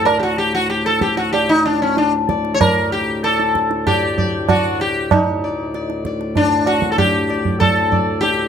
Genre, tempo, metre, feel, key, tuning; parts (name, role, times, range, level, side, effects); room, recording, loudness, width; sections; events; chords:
indian classical, Hindustani; 96 BPM; 4/4; straight; D raga bhairav; A4 = 439 Hz
sitar; melody; 0.0-8.5 s; C#4 to D5; -17 LUFS; left 2 dB
pedal harmonium; drone; 0.0-8.5 s; D2 to A2; -24 LUFS; left 1 dB
tabla; percussion; 0.1-8.5 s; -19 LUFS; right 4 dB
light reverb; close, detailed microphones; -15 LUFS; side -8 dB against mid
0.0-5.1 A section; 5.1-8.5 B section
speeding up 0.0-8.5